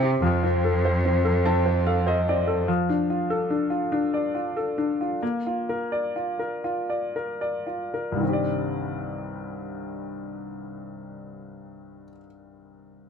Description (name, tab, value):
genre	folk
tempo	54-73 BPM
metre	3/4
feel	straight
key	C dorian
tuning	A4 = 444 Hz
part	clear grand piano	melody	0.0-13.1 s	C2 to A5	-25 LUFS	left 1 dB	none
part	rich cello	bass	0.0-2.6 s	F2 to C3	-23 LUFS	right 1 dB	none
room	light reverb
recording	close, detailed microphones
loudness	-23 LUFS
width	side -7 dB against mid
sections	0.0-8.2 A section; 8.2-11.6 B section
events	grand piano fill 1.0-2.7; slowing down 2.7-8.2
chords	0.2 F; 2.7 Dm/F; 5.2 Bb; 8.2 Cmadd9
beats	| 0.22 1.04 1.86 | 2.68 3.51 4.35 | 5.22 6.14 7.14 | 8.22 9.34 10.45